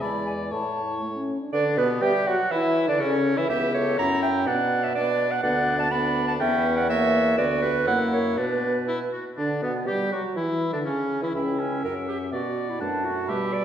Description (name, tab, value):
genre	quick classical-period movement for wind quintet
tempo	122 BPM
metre	2/4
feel	straight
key	B minor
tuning	A4 = 440 Hz
part	mellow hollow silver concert flute	melody	0.0-13.6 s	C#4 to B5	-32 LUFS	left 5 dB	none
part	clear oboe	second line	0.0-13.6 s	B3 to F#5	-30 LUFS	left 2 dB	none
part	clear French horn	accompaniment	0.0-13.6 s	B2 to G4	-29 LUFS	left 2 dB	none
part	clear clarinet	accompaniment	0.0-13.6 s	B3 to B5	-26 LUFS	right 4 dB	none
part	mellow bassoon	bass	0.0-13.6 s	C#2 to G3	-28 LUFS	right 1 dB	none
room	wet recital hall reverb, RT60 1.6 s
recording	heard from further back in the room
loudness	-22 LUFS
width	side -9 dB against mid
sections	0.0-1.5 A section; 1.5-9.4 B section; 9.4-13.6 B section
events	none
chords	0.0 E7; 0.5 A; 1.5 Bm/D; 2.0 Emadd9; 2.5 Bm11 (rootless); 3.5 C#m7b5; 4.0 F#7; 4.5 Bm; 5.4 Bm/D; 6.4 C#m7b5/E; 6.9 F#7/E; 7.4 Bm/D; 7.9 F#7; 8.4 Bm; 9.4 Bm/D; 9.9 N.C.; 10.4 C#m; 11.3 C#dim; 11.8 F#7; 12.3 Bm